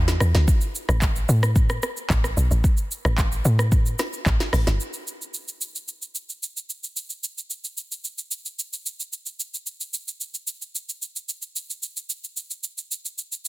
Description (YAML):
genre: amapiano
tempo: 111 BPM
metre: 4/4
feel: straight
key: unclear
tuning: A4 = 440 Hz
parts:
  - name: woody log drum bass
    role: bass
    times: 0.0-4.8 s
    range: G1 to A2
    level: -20 LUFS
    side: equal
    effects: none
  - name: afro-pop drum kit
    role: drums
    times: 0.1-13.5 s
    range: handclaps, hi-hat, kick drum, rim click, shaker, snare drum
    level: -24 LUFS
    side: equal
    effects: soft clipping on snare
room: little or no reverb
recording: dense, heavily limited modern master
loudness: -23 LUFS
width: side -18 dB against mid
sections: 0.0-4.8 A section; 4.8-13.5 B section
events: drop 0.0-4.8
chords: none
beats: | 0.48 1.02 1.56 2.10 | 2.64 3.18 3.72 4.26 | 4.80 5.34 5.88 6.42 | 6.96 7.50 8.04 8.59 | 9.13 9.67 10.21 10.75 | 11.29 11.83 12.37 12.91 | 13.45